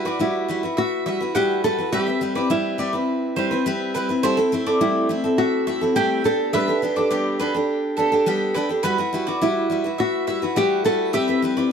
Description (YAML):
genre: acoustic pop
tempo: 104 BPM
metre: 4/4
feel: straight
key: unclear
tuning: A4 = 441 Hz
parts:
  - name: picked steel-string acoustic guitar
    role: accompaniment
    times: 0.0-11.7 s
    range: G3 to B4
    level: -22 LUFS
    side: equal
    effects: none
  - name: mandolin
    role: arpeggios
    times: 0.1-11.7 s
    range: A4 to G5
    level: -27 LUFS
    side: right 3 dB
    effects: none
  - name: nylon-string guitar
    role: melody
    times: 0.2-11.7 s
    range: E4 to B4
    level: -22 LUFS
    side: equal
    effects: none
room: little or no reverb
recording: close, detailed microphones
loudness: -19 LUFS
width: side -7 dB against mid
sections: 0.0-11.7 A section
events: none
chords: 0.0 Emadd9/G; 1.9 Cmaj7/G; 4.2 Am7/G; 6.2 Gadd9; 8.8 Emadd9/G; 11.1 Cmaj7/G